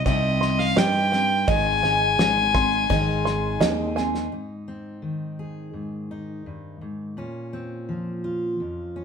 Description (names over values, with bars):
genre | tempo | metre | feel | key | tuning
indie folk with a building arrangement | 84 BPM | 4/4 | straight | Ab major | A4 = 440 Hz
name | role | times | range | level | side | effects
warm fiddle | melody | 0.0-3.6 s | Eb5 to Ab5 | -22 LUFS | left 3 dB | none
picked steel-string acoustic guitar | accompaniment | 0.0-4.3 s | Ab2 to Ab4 | -27 LUFS | left 1 dB | none
open-back banjo | arpeggios | 0.0-4.3 s | Eb5 to C6 | -28 LUFS | right 6 dB | none
picked electric bass | bass | 0.0-4.3 s | Ab1 to G2 | -27 LUFS | right 1 dB | none
cloth-damped thuddy drum kit | drums | 0.1-4.2 s | kick drum, snare drum | -26 LUFS | equal | none
fingerpicked steel-string acoustic guitar | accompaniment | 4.3-9.0 s | F2 to Ab4 | -30 LUFS | equal | none
room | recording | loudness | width
wet stone room reverb, RT60 1.2 s | band playing live in one room | -20 LUFS | side -6 dB against mid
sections
0.0-4.3 A section; 4.3-9.0 B section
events
none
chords
0.0 Cm; 1.5 Ab; 7.2 Bbmadd9